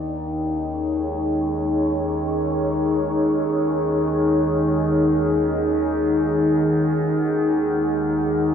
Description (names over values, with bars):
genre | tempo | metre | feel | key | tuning
dark ambient drone | free time | none | none | Eb minor | A4 = 443 Hz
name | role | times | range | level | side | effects
dark analog pad | sustained chords | 0.0-8.5 s | Eb4 to Gb5 | -20 LUFS | equal | chorus
overtone-sweeping drone | drone | 0.0-8.5 s | Eb2 to Eb3 | -25 LUFS | equal | chorus, built-in reverb
room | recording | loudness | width
wet cathedral reverb, RT60 5.0 s | in a vast, echoing space | -19 LUFS | side -8 dB against mid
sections
0.0-8.5 A section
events
none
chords
0.0 Ebm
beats
free time